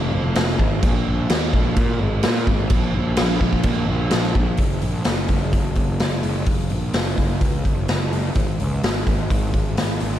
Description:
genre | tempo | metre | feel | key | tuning
rock, shoegaze and dream pop | 127 BPM | 4/4 | straight | unclear | A4 = 440 Hz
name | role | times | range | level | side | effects
fuzz picked electric bass | bass | 0.0-10.2 s | F1 to Bb2 | -22 LUFS | equal | overdrive
raw garage drum kit | drums | 0.4-10.1 s | crash cymbal, hi-hat, kick drum, snare drum | -20 LUFS | equal | none
room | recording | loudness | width
light reverb | none | -18 LUFS | side -12 dB against mid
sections
0.0-4.6 A section; 4.6-10.2 B section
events
none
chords
none

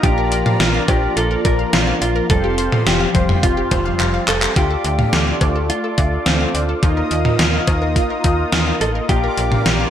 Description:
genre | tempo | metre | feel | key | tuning
synth-pop | 106 BPM | 4/4 | straight | unclear | A4 = 440 Hz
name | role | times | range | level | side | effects
mellow electric guitar | melody | 0.0-9.9 s | C4 to Bb4 | -22 LUFS | right 1 dB | digital delay
mellow synth brass | accompaniment | 0.0-9.9 s | F3 to F4 | -23 LUFS | left 1 dB | chorus, phaser
brassy analog pad | sustained chords | 0.0-9.9 s | F4 to Eb6 | -25 LUFS | left 1 dB | chorus
wide unison pluck | arpeggios | 0.0-9.9 s | F4 to F6 | -27 LUFS | left 1 dB | lush chorus, digital delay
slap-like FM bass | bass | 0.0-9.9 s | F1 to Eb2 | -21 LUFS | equal | none
gated 80s digital drum machine | drums | 0.0-9.8 s | cowbell, handclaps, hi-hat, kick drum, snare drum, toms | -18 LUFS | equal | gated reverb, gated reverb snare, overdrive
room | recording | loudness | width
light reverb | bright 1980s-style digital production | -14 LUFS | side -10 dB against mid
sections
0.0-4.6 A section; 4.6-9.9 B section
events
drum fill 4.0-4.6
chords
0.0 Bb; 2.3 Fsus2; 4.6 Dm; 6.8 Ebsus2; 9.1 Bb

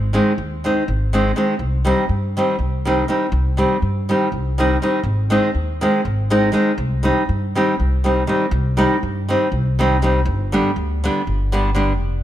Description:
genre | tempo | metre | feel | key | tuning
balkan folk, Balkan wedding band | 243 BPM (eighths) | 7/8 | straight | C harmonic minor | A4 = 439 Hz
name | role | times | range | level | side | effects
upright bass | bass | 0.0-12.2 s | F1 to G2 | -20 LUFS | equal | none
nylon-string guitar | accompaniment | 0.1-11.9 s | D3 to Eb4 | -18 LUFS | equal | none
room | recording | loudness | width
light reverb | close, detailed microphones | -16 LUFS | side -12 dB against mid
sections
0.0-8.5 A section; 8.5-12.2 B section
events
none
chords
0.0 Ab; 1.6 Cm; 5.0 Ab; 6.8 Cm; 10.2 G

